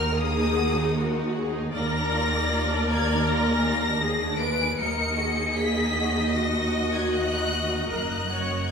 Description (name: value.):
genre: classical, slow romantic movement for string orchestra.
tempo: 72-81 BPM.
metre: 4/4.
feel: rubato.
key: Eb minor.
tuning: A4 = 440 Hz.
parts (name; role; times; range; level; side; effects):
warm symphonic violin section; melody; 0.0-8.7 s; Eb6 to D7; -29 LUFS; left 3 dB; none.
warm symphonic violin section; second line; 0.0-8.7 s; Bb3 to Eb5; -30 LUFS; left 2 dB; none.
rich symphonic viola section; accompaniment; 0.0-8.7 s; Gb4 to Db5; -28 LUFS; left 1 dB; none.
rich studio double bass section; bass; 0.0-8.7 s; Gb1 to Eb2; -28 LUFS; right 1 dB; none.
rich symphonic cello section; bass; 0.0-8.7 s; Eb2 to Gb2; -31 LUFS; right 2 dB; none.
room: wet recital hall reverb, RT60 1.6 s.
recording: recorded in a church or concert hall.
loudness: -22 LUFS.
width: side -6 dB against mid.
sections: 0.0-8.7 A section.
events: none.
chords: 0.0 Ebm; 1.7 Bb7/Eb; 4.8 Ebm; 7.9 Ebm/Gb.